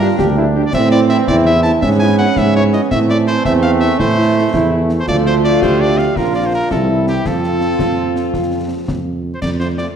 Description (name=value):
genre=military-style march for wind band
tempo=110 BPM (dotted quarters)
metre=6/8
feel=straight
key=F major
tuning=A4 = 440 Hz
part: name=warm cornet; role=melody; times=0.0-9.9 s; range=G4 to A5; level=-21 LUFS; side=equal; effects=none
part: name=mellow euphonium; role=second line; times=0.0-9.1 s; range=C4 to G4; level=-17 LUFS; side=right 3 dB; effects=none
part: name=warm French horn section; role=accompaniment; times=0.0-9.8 s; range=F3 to G4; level=-23 LUFS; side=left 6 dB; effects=none
part: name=clear trombone section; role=sustained chords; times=0.0-9.2 s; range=E3 to D4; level=-24 LUFS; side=right 2 dB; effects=none
part: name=mellow tuba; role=bass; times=0.0-9.9 s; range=Bb1 to A2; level=-16 LUFS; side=right 2 dB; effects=none
part: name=concert snare drum, concert bass drum and clash cymbals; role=drums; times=0.2-9.9 s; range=none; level=-24 LUFS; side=left 2 dB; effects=none
room=moderate recital hall reverb, RT60 1.4 s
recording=dark, warm production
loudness=-12 LUFS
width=side -8 dB against mid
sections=0.0-9.4 A section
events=none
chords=0.0 Gm; 0.7 Am; 1.8 E/G#; 2.9 Am; 5.1 Dm; 6.2 Bb; 6.7 C; 7.3 F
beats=0.20 | 0.74 1.28 | 1.82 2.37 | 2.91 3.45 | 4.00 4.54 | 5.08 5.62 | 6.17 6.71 | 7.25 7.80 | 8.34 8.88 | 9.43